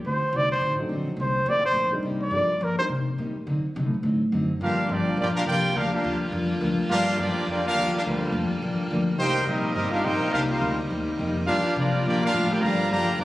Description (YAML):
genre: jazz, big band swing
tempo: 210 BPM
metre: 4/4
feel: swing 59% on 8ths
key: G minor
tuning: A4 = 440 Hz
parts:
  - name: picked steel-string acoustic guitar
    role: accompaniment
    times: 0.0-13.2 s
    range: G2 to G4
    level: -30 LUFS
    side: left 2 dB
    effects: none
  - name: upright bass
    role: bass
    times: 0.0-13.2 s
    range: G1 to D3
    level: -28 LUFS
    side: equal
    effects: none
  - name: breathy trumpet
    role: melody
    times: 0.1-2.9 s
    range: Bb4 to D5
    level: -24 LUFS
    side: equal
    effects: none
  - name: warm upright piano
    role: accompaniment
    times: 0.8-2.9 s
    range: F#3 to Bb4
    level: -33 LUFS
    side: equal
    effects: none
  - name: bright trumpet section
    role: melody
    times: 4.6-13.2 s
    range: G3 to Bb5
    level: -26 LUFS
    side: equal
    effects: none
  - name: clear trombone section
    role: second line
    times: 4.6-13.2 s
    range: D3 to G4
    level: -30 LUFS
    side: right 1 dB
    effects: none
  - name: edgy saxophone section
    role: sustained chords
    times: 4.6-13.2 s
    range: C3 to F4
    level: -30 LUFS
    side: equal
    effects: none
room: moderate scoring stage reverb, RT60 1.6 s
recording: recorded on a phone in the room, club ambience, compression, faint mains hum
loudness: -22 LUFS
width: side -16 dB against mid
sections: 0.0-4.6 A section; 4.6-13.2 B section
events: trumpet solo 0.0-4.6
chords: 0.0 D7b9; 1.2 Cm7; 2.3 Gm7; 2.9 Cm7; 3.5 D7b9; 4.6 Gm7; 9.2 Cm7; 11.5 Gm7